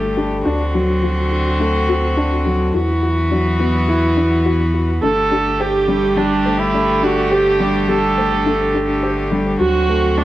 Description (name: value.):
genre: electronica.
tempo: 105 BPM.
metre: 4/4.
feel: straight.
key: G major.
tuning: A4 = 440 Hz.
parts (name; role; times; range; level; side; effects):
rich string quartet; sustained chords; 0.0-10.2 s; D3 to G4; -21 LUFS; equal; plate reverb.
felt-muted upright piano; riff; 0.0-10.2 s; E3 to G4; -19 LUFS; left 1 dB; analog delay.
warm sub bass; bass; 0.0-10.2 s; G1 to E2; -22 LUFS; equal; none.
soft round pluck; arpeggios; 0.2-10.2 s; D4 to C5; -26 LUFS; left 5 dB; none.
warm viola; melody; 5.0-10.2 s; D4 to A4; -18 LUFS; right 4 dB; cassette tape, plate reverb.
room: moderate studio reverb, RT60 0.7 s.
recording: home recording on cassette.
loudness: -14 LUFS.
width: side -15 dB against mid.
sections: 0.0-10.2 A section.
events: none.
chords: 0.5 D7; 2.7 Esus2; 5.0 Gsus2; 9.6 D7.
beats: | 0.46 1.03 1.60 2.17 | 2.74 3.32 3.89 4.46 | 5.03 5.60 6.17 6.74 | 7.32 7.89 8.46 9.03 | 9.60 10.17.